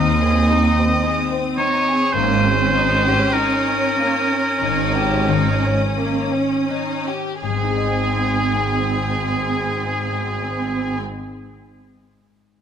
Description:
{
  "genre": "classical, slow romantic movement for symphony orchestra",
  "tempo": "39-56 BPM",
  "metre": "4/4",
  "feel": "rubato",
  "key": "Ab major",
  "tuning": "A4 = 435 Hz",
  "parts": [
    { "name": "rich symphonic violin section", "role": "melody", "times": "0.0-11.0 s", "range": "Ab5 to Eb6", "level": "-30 LUFS", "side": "left 5 dB", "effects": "none" },
    { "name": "bright oboe", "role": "second line", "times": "0.0-11.0 s", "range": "Ab4 to Eb5", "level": "-21 LUFS", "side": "right 1 dB", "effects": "none" },
    { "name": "clear symphonic violin section", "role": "second line", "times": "0.0-11.0 s", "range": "Ab3 to Ab4", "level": "-26 LUFS", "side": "left 3 dB", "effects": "none" },
    { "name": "rich symphonic viola section", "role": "accompaniment", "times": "0.0-11.0 s", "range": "C4 to Db4", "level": "-24 LUFS", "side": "right 2 dB", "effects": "none" },
    { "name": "concert harp", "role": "arpeggios", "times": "0.0-11.3 s", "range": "Ab2 to Eb5", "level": "-27 LUFS", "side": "left 11 dB", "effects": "none" },
    { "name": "clear studio double bass section", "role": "bass", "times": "0.0-11.0 s", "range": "Ab1 to Eb2", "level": "-25 LUFS", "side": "right 2 dB", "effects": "none" },
    { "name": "rich studio cello section", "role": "bass", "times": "0.0-11.0 s", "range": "Eb2 to Ab2", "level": "-25 LUFS", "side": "right 3 dB", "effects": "none" }
  ],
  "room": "moderate concert hall reverb, RT60 2.1 s",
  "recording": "close, detailed microphones",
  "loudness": "-17 LUFS",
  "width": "side -8 dB against mid",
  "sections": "0.0-7.4 A section; 7.4-12.6 B section",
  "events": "slowing down 0.0-7.4",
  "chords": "0.0 Ab; 2.1 Eb7(no3)/Ab; 7.4 Ab",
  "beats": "1.03 | 2.14 3.34 4.61 5.96 | 7.42 8.81 10.17"
}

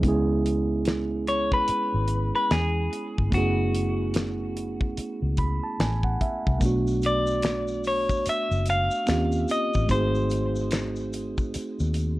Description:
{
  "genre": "R&B, neo-soul",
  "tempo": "73 BPM",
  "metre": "4/4",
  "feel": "swing 61% on 16ths",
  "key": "unclear",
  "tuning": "A4 = 440 Hz",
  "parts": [
    { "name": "mellow tine electric piano", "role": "accompaniment", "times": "0.0-12.2 s", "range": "G#3 to B5", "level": "-28 LUFS", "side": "right 2 dB", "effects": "plate reverb" },
    { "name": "vintage muted fingered electric bass", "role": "bass", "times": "0.0-12.2 s", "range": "F#1 to E2", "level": "-27 LUFS", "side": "equal", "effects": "none" },
    { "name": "damped 70s drum kit", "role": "drums", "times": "0.0-12.2 s", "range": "finger snaps, hi-hat, kick drum, snare drum", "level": "-28 LUFS", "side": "equal", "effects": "none" },
    { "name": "clean electric guitar", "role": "melody", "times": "1.3-11.5 s", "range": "F#4 to E#5", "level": "-27 LUFS", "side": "left 1 dB", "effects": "plate reverb" },
    { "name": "maracas and finger snaps", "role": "percussion", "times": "6.6-12.2 s", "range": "none", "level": "-42 LUFS", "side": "left 3 dB", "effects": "none" }
  ],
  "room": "light reverb",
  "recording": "worn, warbling old tape, cassette tape, warbly pitch drift",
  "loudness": "-23 LUFS",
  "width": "side -17 dB against mid",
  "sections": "0.0-12.2 A section",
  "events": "tine electric piano fill 5.0-6.6",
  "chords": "0.0 C#m7; 3.3 F#m11; 6.6 Bm7; 9.1 D#13; 9.9 G#7b9",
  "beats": "| 0.04 0.86 1.68 2.50 | 3.32 4.15 4.97 5.79 | 6.61 7.43 8.26 9.08 | 9.90 10.72 11.54"
}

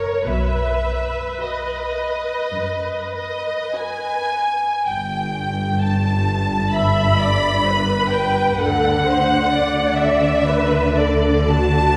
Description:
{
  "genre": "classical, slow romantic movement for string orchestra",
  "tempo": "48-66 BPM",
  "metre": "4/4",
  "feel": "rubato",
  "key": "B major, G major from 4.9 s",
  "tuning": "A4 = 441 Hz",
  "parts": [
    { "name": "rich symphonic violin section", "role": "melody", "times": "0.0-12.0 s", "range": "C#5 to B5", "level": "-25 LUFS", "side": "equal", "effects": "none" },
    { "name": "warm symphonic viola section", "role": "accompaniment", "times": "0.0-12.0 s", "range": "F#4 to E5", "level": "-24 LUFS", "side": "equal", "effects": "none" },
    { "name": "rich symphonic cello section", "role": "bass", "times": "0.0-12.0 s", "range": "F#2 to D3", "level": "-26 LUFS", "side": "equal", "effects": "none" },
    { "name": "rich symphonic double bass section", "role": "bass", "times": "0.0-12.0 s", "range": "G1 to D2", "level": "-25 LUFS", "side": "equal", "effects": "none" },
    { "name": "warm symphonic violin section", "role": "second line", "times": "1.4-12.0 s", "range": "F#4 to B5", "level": "-28 LUFS", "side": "equal", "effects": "none" }
  ],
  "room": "wet church reverb, RT60 3.3 s",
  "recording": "recorded in a church or concert hall",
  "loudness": "-19 LUFS",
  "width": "mono",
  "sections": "0.0-4.9 A section; 4.9-12.0 B section",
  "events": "none",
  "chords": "0.3 B; 4.9 G; 8.6 Dadd9",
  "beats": "| 0.27 1.43 2.57 3.77 | 4.87 5.82 6.75 7.67 | 8.60 9.53 10.47 11.49"
}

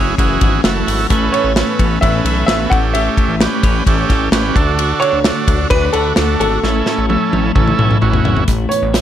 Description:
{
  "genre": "jangly indie pop",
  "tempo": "130 BPM",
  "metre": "4/4",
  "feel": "straight",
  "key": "A major",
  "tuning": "A4 = 440 Hz",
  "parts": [
    { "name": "warm upright piano", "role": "melody", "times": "0.0-9.0 s", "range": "A4 to F#5", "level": "-19 LUFS", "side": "right 1 dB", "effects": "plate reverb" },
    { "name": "combo organ", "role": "accompaniment", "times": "0.0-8.4 s", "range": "C#4 to B4", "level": "-18 LUFS", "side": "right 6 dB", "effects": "none" },
    { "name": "twelve-string electric guitar", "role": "arpeggios", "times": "0.0-9.0 s", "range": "F#2 to G4", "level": "-21 LUFS", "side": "left 6 dB", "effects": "tape echo" },
    { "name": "chorused synth bass", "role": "bass", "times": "0.0-9.0 s", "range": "F#1 to D2", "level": "-19 LUFS", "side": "equal", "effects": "none" },
    { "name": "modern studio drum kit", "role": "drums", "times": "0.2-9.0 s", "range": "hi-hat, kick drum, ride cymbal, snare drum, toms", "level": "-16 LUFS", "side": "equal", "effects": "none" }
  ],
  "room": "light reverb",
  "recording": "none",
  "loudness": "-12 LUFS",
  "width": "side -10 dB against mid",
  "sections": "0.0-8.5 A section",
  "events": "drum fill 6.6-8.5",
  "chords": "0.0 F#m7; 1.1 Aadd9; 2.7 A7; 4.6 D; 6.6 A; 8.5 Aadd9",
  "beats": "0.19 0.65 | 1.11 1.57 2.03 2.49 | 2.95 3.41 3.87 4.33 | 4.79 5.25 5.71 6.17 | 6.63 7.09 7.55 8.02 | 8.48 8.94"
}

